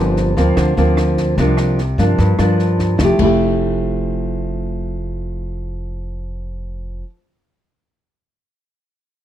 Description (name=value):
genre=bossa nova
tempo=149 BPM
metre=4/4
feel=straight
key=F major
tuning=A4 = 442 Hz
part: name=nylon-string guitar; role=accompaniment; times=0.0-7.1 s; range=G2 to G4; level=-17 LUFS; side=equal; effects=none
part: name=upright bass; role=bass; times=0.0-7.0 s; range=F1 to G2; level=-19 LUFS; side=equal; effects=none
part: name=compact cocktail drum kit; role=drums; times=0.2-3.3 s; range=crash cymbal, kick drum, rim click, snare drum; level=-24 LUFS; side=equal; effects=none
room=small room ambience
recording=dry, close 1970s-style studio recording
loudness=-14 LUFS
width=side -11 dB against mid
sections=0.0-3.0 A section; 3.0-6.2 B section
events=none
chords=0.0 Gm7; 1.4 C9sus4; 3.0 Fmaj9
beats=0.17 0.57 0.98 | 1.38 1.78 2.18 2.59 | 2.99 3.39 3.79 4.20 | 4.60 5.00 5.41 5.81